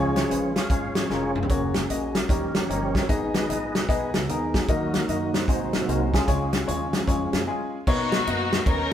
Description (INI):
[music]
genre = uptempo gospel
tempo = 151 BPM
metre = 4/4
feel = swing 64% on 8ths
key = unclear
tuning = A4 = 439 Hz
[part]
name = warm concert grand piano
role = accompaniment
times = 0.0-8.8 s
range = G#2 to D#5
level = -28 LUFS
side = left 3 dB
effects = none
[part]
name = percussive tonewheel organ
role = sustained chords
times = 0.0-7.4 s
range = B#2 to E#5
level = -27 LUFS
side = right 1 dB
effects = slow rotary speaker, chorus vibrato
[part]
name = upright bass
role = bass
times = 0.0-8.9 s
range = E#1 to F#2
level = -32 LUFS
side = right 1 dB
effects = none
[part]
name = natural country drum kit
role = drums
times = 0.2-8.8 s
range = crash cymbal, hi-hat, kick drum, ride cymbal, snare drum, toms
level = -25 LUFS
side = equal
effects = none
[part]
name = warm studio string section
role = melody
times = 7.9-8.9 s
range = A#3 to A#4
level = -26 LUFS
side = left 3 dB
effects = none
[sound]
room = moderate stone room reverb, RT60 1.3 s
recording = band playing live in one room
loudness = -22 LUFS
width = side -10 dB against mid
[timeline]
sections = 0.0-7.9 A section; 7.9-8.9 B section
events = tonewheel organ solo 0.0-7.9; drum fill 1.1-1.5; break 7.5-7.9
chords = 0.0 C#; 1.5 F#; 2.3 D#7; 3.1 G#m; 4.7 D#m; 5.5 G#7; 6.3 C#; 7.9 Bmaj9